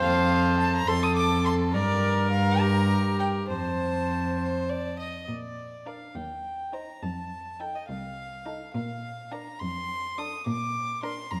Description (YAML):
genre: quick classical-period movement for string quartet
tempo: 69 BPM (dotted quarters)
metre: 6/8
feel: straight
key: unclear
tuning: A4 = 442 Hz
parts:
  - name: warm violin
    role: melody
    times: 0.0-11.4 s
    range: D5 to Eb6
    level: -34 LUFS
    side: equal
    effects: none
  - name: rich violin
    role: second line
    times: 0.0-11.2 s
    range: A4 to Eb5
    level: -36 LUFS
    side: equal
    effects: none
  - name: warm viola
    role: accompaniment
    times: 0.0-11.2 s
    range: D4 to C5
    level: -33 LUFS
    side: equal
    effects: none
  - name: rich cello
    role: bass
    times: 0.0-11.4 s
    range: C2 to Bb2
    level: -30 LUFS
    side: equal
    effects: none
room: wet recital hall reverb, RT60 1.4 s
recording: none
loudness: -27 LUFS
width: mono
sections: 0.0-5.3 A section; 5.3-11.4 B section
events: none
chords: 0.0 F; 1.7 Gm; 3.5 F; 5.3 Bb; 6.2 Cm/Eb; 7.0 F7; 8.7 Bb; 9.6 F6; 10.5 Bb